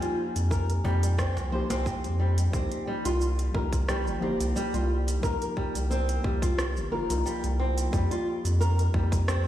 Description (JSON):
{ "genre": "organic downtempo", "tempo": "89 BPM", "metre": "4/4", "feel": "swing 53% on 16ths", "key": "C minor", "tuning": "A4 = 440 Hz", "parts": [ { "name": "muted felt-like synth keys", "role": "accompaniment", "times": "0.0-9.5 s", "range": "F3 to Ab5", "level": "-33 LUFS", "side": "left 2 dB", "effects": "chorus, sidechain pumping, ping-pong delay" }, { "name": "flamenco guitar", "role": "arpeggios", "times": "0.0-9.5 s", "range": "G3 to C5", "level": "-31 LUFS", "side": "equal", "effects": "ping-pong delay" }, { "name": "organic electronic drum kit", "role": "drums", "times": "0.0-9.4 s", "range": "cabasa, hi-hat, rim click", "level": "-37 LUFS", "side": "right 2 dB", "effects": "overdrive" }, { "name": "cajon", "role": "percussion", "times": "0.0-1.8 s", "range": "none", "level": "-40 LUFS", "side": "left 1 dB", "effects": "none" }, { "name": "round analog bass", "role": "bass", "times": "0.4-9.5 s", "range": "G1 to F2", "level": "-26 LUFS", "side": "equal", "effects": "sidechain pumping" }, { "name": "electronic kick drum", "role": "drums", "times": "0.5-9.2 s", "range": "none", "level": "-29 LUFS", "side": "equal", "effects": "overdrive" } ], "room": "light reverb, digital ambience", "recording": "played on a big sound system in a bare room, large studio reverb", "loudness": "-25 LUFS", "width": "side -12 dB against mid", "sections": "0.0-2.5 A section; 2.5-9.5 B section", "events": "filter sweep on nylon-string guitar 0.0-2.5", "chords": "0.0 Fm7; 2.5 Cm7; 7.9 F7(no3)", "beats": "0.52 1.19 1.86 | 2.54 3.21 3.88 4.56 | 5.23 5.91 6.58 7.26 | 7.93 8.60 9.28" }